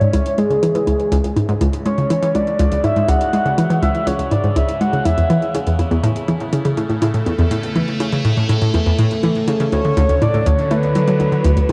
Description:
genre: ambient, sequencer-driven space music.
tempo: 122 BPM.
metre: 4/4.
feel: straight.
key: C# phrygian.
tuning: A4 = 441 Hz.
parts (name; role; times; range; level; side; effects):
soft octave-layered synth lead; melody; 0.0-5.5, 9.7-11.7 s; G#4 to F#5; -22 LUFS; equal; chorus, delay.
evolving wavetable pad; sustained chords; 0.6-11.7 s; C3 to A4; -26 LUFS; equal; phaser, built-in reverb.
hollow square pluck; riff; 0.0-11.7 s; C#2 to A3; -19 LUFS; equal; chorus, delay.
electronic hi-hat and bongos; percussion; 0.0-11.7 s; none; -29 LUFS; equal; delay.
room: wet lush hall reverb, RT60 2.8 s.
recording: worn, warbling old tape, cassette tape, warbly pitch drift.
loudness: -17 LUFS.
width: mono.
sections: 0.0-11.7 A section.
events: fade-in on ambient pad 0.0-11.7.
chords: 0.0 C#m; 5.8 A; 9.7 Dadd9.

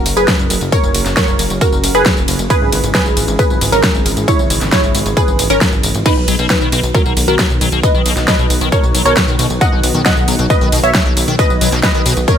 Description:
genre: uplifting trance.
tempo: 135 BPM.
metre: 4/4.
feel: straight.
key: B major.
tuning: A4 = 440 Hz.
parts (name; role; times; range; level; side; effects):
wide unison pluck; melody; 0.0-12.4 s; C#4 to F#5; -17 LUFS; equal; analog chorus, sidechain pumping, dub echo.
lush unison pad; sustained chords; 0.0-12.4 s; C#3 to B3; -22 LUFS; equal; chorus, sidechain pumping.
plucky analog bass; bass; 0.0-12.3 s; F#1 to B1; -19 LUFS; equal; sidechain pumping.
big-room dance drum kit; drums; 0.1-12.4 s; crash cymbal, hi-hat, ride cymbal, snare drum, tambourine; -17 LUFS; equal; none.
electronic kick drum; drums; 0.3-12.4 s; none; -15 LUFS; equal; none.
liquid acid bass; arpeggios; 6.1-12.4 s; B2 to F#3; -21 LUFS; left 4 dB; phaser, analog chorus, sidechain pumping.
room: little or no reverb.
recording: none.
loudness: -11 LUFS.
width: side -8 dB against mid.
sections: 0.0-12.4 A section.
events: none.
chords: 0.0 F#; 2.5 E6/G#; 6.1 B.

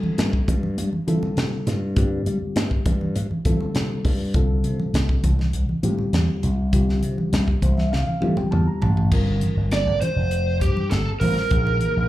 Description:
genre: electric jazz fusion.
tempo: 101 BPM.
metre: 4/4.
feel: straight.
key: unclear.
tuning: A4 = 439 Hz.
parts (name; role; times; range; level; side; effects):
mellow reed electric piano; accompaniment; 0.0-12.1 s; C3 to Bb5; -26 LUFS; left 1 dB; fast tremolo, slapback echo.
slap bass with an envelope filter; bass; 0.0-12.1 s; F1 to G3; -22 LUFS; equal; none.
congas; percussion; 0.0-12.0 s; none; -29 LUFS; right 1 dB; none.
crisp fusion drum kit; drums; 0.2-11.9 s; crash cymbal, hi-hat, kick drum, snare drum, toms; -24 LUFS; equal; none.
lead guitar through a small cranked amp; melody; 9.7-12.1 s; G4 to D5; -23 LUFS; right 2 dB; overdrive, slapback echo.
room: little or no reverb.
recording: live gig heard through the venue's PA, club reverb.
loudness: -19 LUFS.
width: side -15 dB against mid.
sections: 0.0-9.1 A section; 9.1-12.1 B section.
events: reed electric piano fill 7.3-9.1; drum fill 7.9-9.1.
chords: 0.0 G9sus4; 4.3 Csus24; 9.1 Gm7; 11.5 Bbsus2.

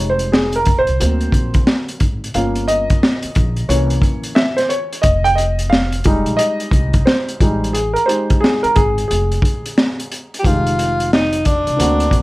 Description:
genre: hip hop, jazz-hop.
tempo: 89 BPM.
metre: 4/4.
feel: swing 63% on 16ths.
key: F minor.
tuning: A4 = 440 Hz.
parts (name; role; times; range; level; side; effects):
dark grand piano; accompaniment; 0.0-12.2 s; D3 to G5; -18 LUFS; equal; none.
upright bass; bass; 0.0-12.2 s; F1 to D2; -20 LUFS; equal; none.
crunchy breakbeat drum kit; drums; 0.2-12.2 s; hi-hat, kick drum, snare drum; -16 LUFS; equal; none.
breathy tenor saxophone; melody; 10.4-12.2 s; D4 to G4; -17 LUFS; left 1 dB; none.
room: light reverb.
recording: none.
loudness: -13 LUFS.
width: side -19 dB against mid.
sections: 0.0-10.4 A section; 10.4-12.2 B section.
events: grand piano solo 0.0-10.4.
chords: 0.0 Fm9; 1.0 Daug7; 2.4 Gm7b5; 3.7 C7b9; 5.0 Fm9.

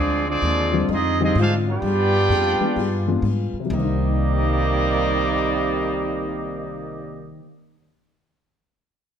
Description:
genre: jazz, big band swing.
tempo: 128 BPM.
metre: 4/4.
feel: swing 66% on 8ths.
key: C minor.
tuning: A4 = 439 Hz.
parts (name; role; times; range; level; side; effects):
warm trumpet section; melody; 0.0-7.4 s; Bb3 to G5; -24 LUFS; right 1 dB; none.
warm trombone section; second line; 0.0-7.3 s; C3 to G4; -24 LUFS; right 2 dB; none.
picked plugged-in steel-string acoustic guitar; accompaniment; 0.0-7.5 s; C3 to Ab4; -29 LUFS; left 2 dB; none.
upright bass; bass; 0.0-7.3 s; C2 to Ab2; -24 LUFS; equal; none.
warm baby grand piano; accompaniment; 0.7-7.5 s; C3 to G4; -26 LUFS; left 4 dB; none.
room: moderate large studio reverb, RT60 1.3 s.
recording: dark, warm production.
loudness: -18 LUFS.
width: side -8 dB against mid.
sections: 0.0-3.7 A section; 3.7-7.5 B section.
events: none.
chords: 0.0 Dm7b5; 1.8 G7b9; 3.7 Cm9.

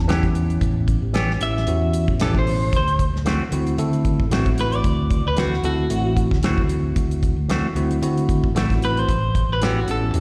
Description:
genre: straight-eighth soul blues.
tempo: 113 BPM.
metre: 4/4.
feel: swing 56% on 16ths.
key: unclear.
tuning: A4 = 440 Hz.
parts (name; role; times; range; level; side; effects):
electric guitar at the edge of break-up; melody; 0.0-10.2 s; F#4 to A5; -27 LUFS; equal; slapback echo.
fingered electric bass; bass; 0.0-10.2 s; A1 to D3; -24 LUFS; equal; none.
bell-like tine electric piano; accompaniment; 0.1-10.2 s; B2 to A4; -28 LUFS; equal; slapback echo.
electric guitar with an envelope filter; stabs; 0.1-9.8 s; E3 to G4; -30 LUFS; equal; warbly pitch drift, slapback echo.
damped 70s drum kit; drums; 0.1-10.2 s; hi-hat, kick drum, snare drum; -26 LUFS; equal; none.
room: light reverb, small room ambience.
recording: live gig heard through the venue's PA, recital hall reverb.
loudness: -20 LUFS.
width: mono.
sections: 0.0-10.2 A section.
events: none.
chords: 0.0 A9; 2.7 D9; 9.1 A9.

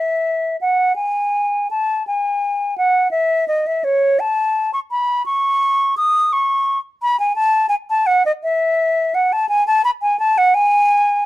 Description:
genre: classical, baroque-style fantasia for unaccompanied flute.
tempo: 56 BPM (dotted quarters).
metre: 6/8.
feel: rubato.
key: C# minor.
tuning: A4 = 435 Hz.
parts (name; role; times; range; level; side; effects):
concert flute; solo; 0.0-11.3 s; C#5 to D#6; -15 LUFS; equal; none.
room: light reverb.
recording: dark, warm production.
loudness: -15 LUFS.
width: side -16 dB against mid.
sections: 0.0-11.3 A section.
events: none.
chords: none.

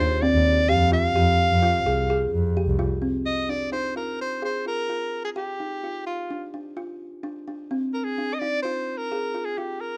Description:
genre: contemporary instrumental, chamber music in an uneven meter.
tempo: 128 BPM.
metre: 5/4.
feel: straight.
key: F dorian.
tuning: A4 = 440 Hz.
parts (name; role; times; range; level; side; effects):
clear soprano saxophone; melody; 0.0-10.0 s; F4 to F5; -27 LUFS; equal; none.
kalimba; arpeggios; 0.0-9.9 s; C4 to Ab4; -30 LUFS; equal; none.
warm double bass; bass; 0.0-2.9 s; C2 to F2; -26 LUFS; equal; none.
room: little or no reverb.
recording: close, detailed microphones.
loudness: -24 LUFS.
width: mono.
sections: 0.0-3.0 A section; 3.0-10.0 B section.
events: none.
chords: 0.0 Ebmaj7(no3); 0.7 Fmadd9; 3.0 F5; 5.4 G5; 7.7 Fm.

